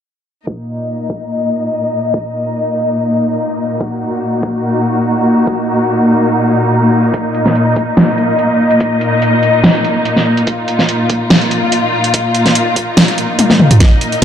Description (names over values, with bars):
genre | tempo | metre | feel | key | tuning
heavy wobble dubstep | 144 BPM | 4/4 | swing 54% on 16ths, half-time | Eb minor | A4 = 441 Hz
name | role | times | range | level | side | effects
rich symphonic string section | sustained chords | 0.5-14.2 s | Bb2 to Eb5 | -12 LUFS | left 1 dB | sidechain pumping
electronic kick drum | drums | 0.5-14.2 s | none | -15 LUFS | equal | overdrive, high-pass filter on kick
dubstep drum kit | drums | 7.1-14.2 s | hi-hat, snare drum, toms | -12 LUFS | equal | low-pass filter on hats, low-pass filter on snare, low-pass filter on toms
room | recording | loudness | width
moderate lush hall reverb, RT60 2.4 s | dark, warm production, low-pass filter | -11 LUFS | side -9 dB against mid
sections
0.5-13.8 A section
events
filter sweep 0.5-13.8; drum fill 13.4-13.8, 13.8-14.2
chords
0.5 Eb5